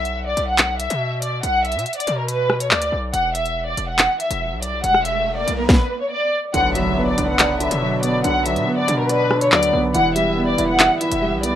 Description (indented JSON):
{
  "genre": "hip hop, drill",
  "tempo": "141 BPM",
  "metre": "4/4",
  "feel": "half-time",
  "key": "B minor",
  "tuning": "A4 = 442 Hz",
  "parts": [
    { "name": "warm studio violin section", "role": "melody", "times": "0.0-11.6 s", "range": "A#4 to F#5", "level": "-20 LUFS", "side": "left 1 dB", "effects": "low-pass filter" },
    { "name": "distorted 808-style bass", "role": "bass", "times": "0.0-11.6 s", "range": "E1 to B2", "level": "-26 LUFS", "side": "equal", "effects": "distortion" },
    { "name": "drill drum kit", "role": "drums", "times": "0.1-11.5 s", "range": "handclaps, hi-hat, kick drum, rim click, snare drum", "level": "-18 LUFS", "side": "left 1 dB", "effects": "none" },
    { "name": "riser and impact", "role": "sound effects", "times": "4.3-8.2 s", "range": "none", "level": "-31 LUFS", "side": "right 1 dB", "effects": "none" },
    { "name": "felt-muted upright piano", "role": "accompaniment", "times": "6.5-11.6 s", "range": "D3 to E5", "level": "-21 LUFS", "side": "right 2 dB", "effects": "low-pass filter" },
    { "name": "accordion", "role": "sustained chords", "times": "6.5-11.6 s", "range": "F#3 to B4", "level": "-26 LUFS", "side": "left 1 dB", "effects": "light tremolo tuning" }
  ],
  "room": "small room ambience",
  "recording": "rough home demo mix",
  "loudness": "-17 LUFS",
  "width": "side -11 dB against mid",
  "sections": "0.0-6.5 A section; 6.5-11.6 B section",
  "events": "break 0.0-6.5; riser 4.3-6.5; impact 6.5-8.2",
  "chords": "0.0 Bm; 3.1 E5; 6.5 Bm; 9.9 Em"
}